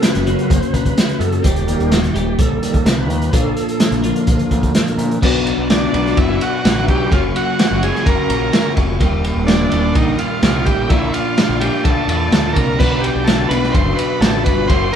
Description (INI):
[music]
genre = psychedelic rock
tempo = 127 BPM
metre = 4/4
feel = straight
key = unclear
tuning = A4 = 440 Hz
[part]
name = bright tonewheel organ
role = sustained chords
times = 0.0-15.0 s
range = C#3 to Eb6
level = -24 LUFS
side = right 3 dB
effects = slow rotary speaker
[part]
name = twelve-string electric guitar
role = riff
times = 0.0-15.0 s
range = Eb2 to B4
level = -20 LUFS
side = left 3 dB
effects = phaser
[part]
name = crunchy breakbeat drum kit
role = drums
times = 0.0-15.0 s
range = crash cymbal, hi-hat, kick drum, ride cymbal, snare drum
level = -17 LUFS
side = equal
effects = none
[part]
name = growling picked electric bass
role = bass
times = 0.2-14.9 s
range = Eb1 to Bb2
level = -21 LUFS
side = equal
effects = overdrive
[part]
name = overdriven combo organ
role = melody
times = 5.7-15.0 s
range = D4 to C5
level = -20 LUFS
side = right 3 dB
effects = none
[sound]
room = moderate studio reverb, RT60 0.7 s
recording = band playing live in one room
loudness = -13 LUFS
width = side -8 dB against mid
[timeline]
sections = 0.0-5.2 A section; 5.2-15.0 B section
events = tonewheel organ solo 0.0-5.2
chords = 0.0 F#; 1.4 Eb; 3.3 Bb; 5.2 Bm; 7.1 F#; 9.0 Eb; 10.9 Bb; 12.8 Bm